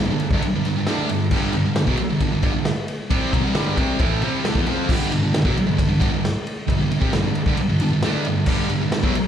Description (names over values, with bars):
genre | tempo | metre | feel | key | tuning
garage rock duo or trio | 134 BPM | 4/4 | straight | G mixolydian | A4 = 444 Hz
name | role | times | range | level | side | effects
thick fuzz guitar | riff | 0.0-9.2 s | G2 to F4 | -20 LUFS | equal | distortion, slapback echo
raw garage drum kit | drums | 0.2-9.3 s | crash cymbal, kick drum, ride cymbal, snare drum | -22 LUFS | equal | none
room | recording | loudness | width
light reverb, studio reverb | live gig heard through the venue's PA, club reverb | -18 LUFS | side -9 dB against mid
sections
0.0-4.9 A section; 4.9-9.3 A section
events
none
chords
0.0 G5